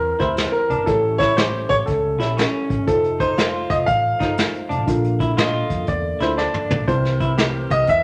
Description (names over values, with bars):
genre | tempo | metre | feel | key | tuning
uptempo 1960s-style soul | 120 BPM | 4/4 | swing 66% on 8ths | C mixolydian | A4 = 440 Hz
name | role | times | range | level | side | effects
warm grand piano | melody | 0.0-8.0 s | A4 to F5 | -23 LUFS | equal | none
tonewheel organ | sustained chords | 0.0-8.0 s | D3 to Bb4 | -35 LUFS | equal | fast rotary speaker, overdrive
vintage muted fingered electric bass | bass | 0.0-8.0 s | F1 to Bb2 | -28 LUFS | equal | none
dark upright piano | accompaniment | 0.2-7.7 s | A2 to C#5 | -30 LUFS | equal | none
electric guitar through a small old amp | riff | 0.2-7.8 s | C#4 to G4 | -29 LUFS | equal | none
vintage brush drum kit | drums | 0.2-8.0 s | hi-hat, kick drum, snare drum, toms | -26 LUFS | equal | none
room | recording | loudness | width
wet studio reverb, RT60 0.8 s | none | -20 LUFS | mono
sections
0.0-8.0 A section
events
grand piano solo 0.0-8.0; drum fill 6.4-6.9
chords
0.0 C7; 0.9 A7; 2.9 F7; 4.9 Bbmaj7; 6.9 C7